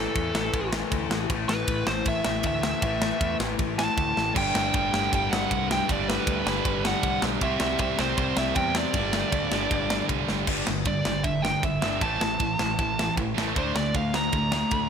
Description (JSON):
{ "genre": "punk rock", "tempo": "157 BPM", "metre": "4/4", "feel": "straight", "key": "unclear", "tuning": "A4 = 440 Hz", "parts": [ { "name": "nasal lead guitar with a parked wah", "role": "melody", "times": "0.0-14.9 s", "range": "A4 to Bb5", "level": "-28 LUFS", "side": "right 2 dB", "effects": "overdrive, ping-pong delay" }, { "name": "distorted electric guitar", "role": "riff", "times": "0.0-14.9 s", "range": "G2 to D4", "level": "-30 LUFS", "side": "left 8 dB", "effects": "distortion" }, { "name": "growling picked electric bass", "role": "bass", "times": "0.0-14.9 s", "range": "G1 to E2", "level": "-32 LUFS", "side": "equal", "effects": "overdrive" }, { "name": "tight metal drum kit", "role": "drums", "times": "0.2-14.8 s", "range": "crash cymbal, kick drum, ride cymbal, snare drum", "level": "-28 LUFS", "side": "equal", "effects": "none" }, { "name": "tight distorted guitar", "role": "riff", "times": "4.3-14.9 s", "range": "G2 to D4", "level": "-30 LUFS", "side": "right 18 dB", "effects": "distortion" } ], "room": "little or no reverb", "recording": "none", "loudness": "-23 LUFS", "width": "side -7 dB against mid", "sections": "0.0-10.5 A section; 10.5-14.9 B section", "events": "drum fill 4.2, 10.3; lead electric guitar solo 10.5-14.9", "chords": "0.0 A5; 4.4 G; 7.4 C; 8.9 G5; 12.0 A5; 13.6 D5" }